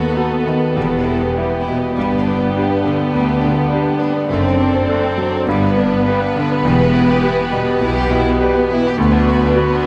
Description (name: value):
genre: classical, romantic movement for piano and orchestra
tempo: 102 BPM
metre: 4/4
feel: rubato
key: unclear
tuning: A4 = 441 Hz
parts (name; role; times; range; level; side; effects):
- clear grand piano; melody; 0.0-9.9 s; D2 to B4; -21 LUFS; equal; none
- rich chamber violin section; melody; 0.0-9.9 s; G4 to B4; -29 LUFS; equal; none
- rich chamber violin section; second line; 0.0-9.9 s; G3 to G4; -26 LUFS; equal; none
- rich studio viola section; accompaniment; 0.0-9.9 s; B3 to C4; -24 LUFS; equal; none
- warm French horn section; sustained chords; 0.0-9.9 s; B3 to A4; -24 LUFS; equal; none
- rich symphonic cello section; bass; 0.0-9.5 s; D2 to B2; -26 LUFS; equal; none
- warm chamber double bass section; bass; 0.0-9.5 s; E1 to D2; -26 LUFS; equal; none
room: moderate scoring stage reverb, RT60 1.8 s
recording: none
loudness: -16 LUFS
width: mono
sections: 0.0-9.9 A section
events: none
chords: 0.0 B7/D#; 0.8 Em; 2.0 G; 4.3 D7/F#; 5.5 G; 6.6 Em; 9.0 Bm/D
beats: 0.16 0.76 1.36 | 1.96 2.54 3.13 3.71 | 4.29 4.87 5.46 6.04 | 6.62 7.21 7.80 8.39 | 8.97 9.56